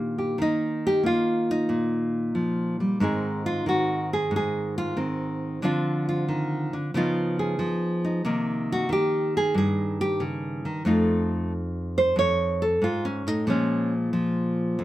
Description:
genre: solo jazz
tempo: 92 BPM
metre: 4/4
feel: swing 69% on 8ths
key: Eb major, Ab major from 3.0 s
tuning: A4 = 439 Hz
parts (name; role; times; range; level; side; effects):
- nylon-string guitar; solo; 0.0-14.8 s; F2 to Db5; -23 LUFS; equal; none
room: moderate studio reverb, RT60 0.7 s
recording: band playing live in one room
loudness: -23 LUFS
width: side -15 dB against mid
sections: 0.0-3.0 A section; 3.0-14.8 B section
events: nylon-string guitar solo 3.0-14.8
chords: 0.0 Eb; 3.0 Ab; 5.6 Dm7; 6.9 Db9; 8.2 Cm7; 10.9 F7b13; 13.5 Bb5

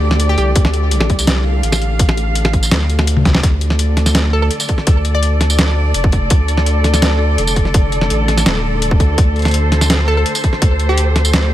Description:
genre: half-time drum and bass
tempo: 167 BPM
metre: 4/4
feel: half-time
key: D minor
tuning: A4 = 440 Hz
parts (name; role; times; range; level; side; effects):
- dark chamber cello section; sustained chords; 0.0-11.5 s; D3 to F5; -20 LUFS; equal; sidechain pumping
- saturated sub bass; bass; 0.0-11.5 s; Eb1 to D2; -15 LUFS; equal; none
- flickering grainy texture; texture; 0.0-3.5 s; A3 to G4; -28 LUFS; left 2 dB; built-in reverb
- boom bap sampler-style drum kit; drums; 0.1-11.4 s; hi-hat, snare drum, tambourine, toms; -17 LUFS; equal; none
- hollow square pluck; melody; 0.3-0.4, 4.3-5.5, 10.1-11.1 s; G4 to D5; -23 LUFS; equal; chorus, digital delay
- electronic kick drum; drums; 0.6-10.7 s; none; -13 LUFS; equal; overdrive
room: little or no reverb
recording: none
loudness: -12 LUFS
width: side -13 dB against mid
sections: 0.0-3.4 A section; 3.4-11.5 A section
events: drop 0.0-3.4, 3.4-11.5; drum fill 3.2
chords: 0.0 D5

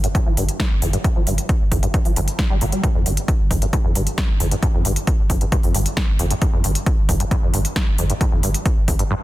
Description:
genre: driving peak-time techno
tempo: 134 BPM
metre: 4/4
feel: straight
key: unclear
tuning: A4 = 440 Hz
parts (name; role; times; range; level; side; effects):
- acid bass, saw; riff; 0.0-9.1 s; F2 to G3; -24 LUFS; equal; ensemble chorus, sidechain pumping, dub echo
- saturated sub bass; bass; 0.0-9.0 s; G1; -23 LUFS; equal; tube saturation, sidechain pumping, low-pass filter
- techno drum kit; drums; 0.0-9.1 s; hi-hat, snare drum; -26 LUFS; left 1 dB; sidechain pumping on hats, studio reverb
- electronic kick drum; drums; 0.1-9.0 s; none; -19 LUFS; equal; studio reverb
room: digital ambience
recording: dense, heavily limited modern master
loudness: -17 LUFS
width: side -16 dB against mid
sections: 0.0-9.2 A section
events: filter sweep on acid bass 0.0-9.2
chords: none

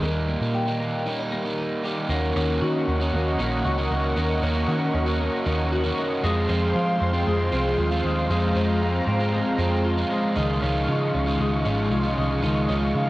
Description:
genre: indie pop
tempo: 116 BPM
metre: 4/4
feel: straight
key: unclear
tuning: A4 = 440 Hz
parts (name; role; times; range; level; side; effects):
- overdriven electric guitar; accompaniment; 0.0-13.1 s; Db3 to Gb4; -27 LUFS; right 2 dB; cassette tape
- twelve-string electric guitar; arpeggios; 0.0-13.1 s; Eb3 to G4; -27 LUFS; left 2 dB; phaser, cassette tape
- vintage muted picked electric bass; bass; 0.0-13.1 s; Ab1 to F3; -25 LUFS; equal; none
- warm analog pad; sustained chords; 2.3-13.1 s; Ab3 to Db6; -29 LUFS; equal; chorus, cassette tape
room: light reverb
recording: home recording on cassette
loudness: -21 LUFS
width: side -18 dB against mid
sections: 0.0-2.1 A section; 2.1-13.1 B section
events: none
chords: 0.0 Eb; 2.1 Ebm7; 6.2 Fm; 10.4 Dbadd9

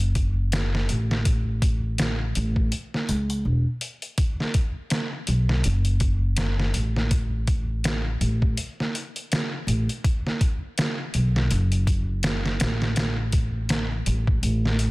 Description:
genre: trip hop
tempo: 82 BPM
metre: 4/4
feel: swing 57% on 16ths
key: unclear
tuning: A4 = 442 Hz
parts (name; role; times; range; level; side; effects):
- upright bass; bass; 0.0-14.9 s; E1 to C#2; -23 LUFS; equal; none
- trip hop sampler-style drum kit; drums; 0.0-14.9 s; hi-hat, kick drum, snare drum; -25 LUFS; equal; studio ambience
room: little or no reverb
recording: dense, heavily limited modern master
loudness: -22 LUFS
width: side -22 dB against mid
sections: 0.0-14.9 A section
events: none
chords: none

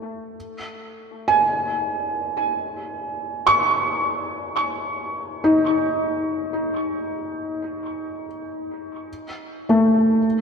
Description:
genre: ambient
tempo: free time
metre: none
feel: none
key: unclear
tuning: A4 = 445 Hz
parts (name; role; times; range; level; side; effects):
- felt-muted upright piano; solo; 0.0-10.4 s; A3 to C#6; -21 LUFS; equal; tape echo
room: wet lush hall reverb, RT60 2.5 s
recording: dreamy mix soaked in reverb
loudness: -20 LUFS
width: side -6 dB against mid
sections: 0.0-10.4 A section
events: none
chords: 0.4 C#5; 9.1 N.C.

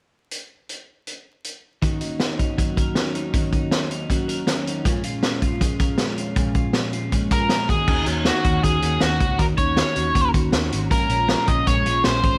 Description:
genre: jangly indie pop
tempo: 158 BPM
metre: 4/4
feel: straight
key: unclear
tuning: A4 = 440 Hz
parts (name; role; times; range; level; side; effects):
- vintage drum kit; drums; 0.3-12.3 s; crash cymbal, hi-hat, kick drum, snare drum; -24 LUFS; equal; none
- mellow electric guitar; accompaniment; 1.8-12.4 s; Bb2 to Gb4; -31 LUFS; equal; analog chorus
- twelve-string electric guitar; arpeggios; 1.8-12.4 s; Bb2 to Bb4; -29 LUFS; equal; none
- biting lead guitar; melody; 7.3-12.4 s; Gb4 to Eb5; -24 LUFS; equal; overdrive
- vintage muted fingered electric bass; bass; 7.9-12.4 s; Ab1 to Eb2; -28 LUFS; equal; none
room: light reverb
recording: vinyl crackle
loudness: -21 LUFS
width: mono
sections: 0.3-1.8 A section; 1.8-7.9 B section; 7.9-12.4 C section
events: none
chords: 0.3 N.C.; 1.8 Ebm7; 4.9 Bbm7; 7.7 Ebm7; 10.9 Bbm7

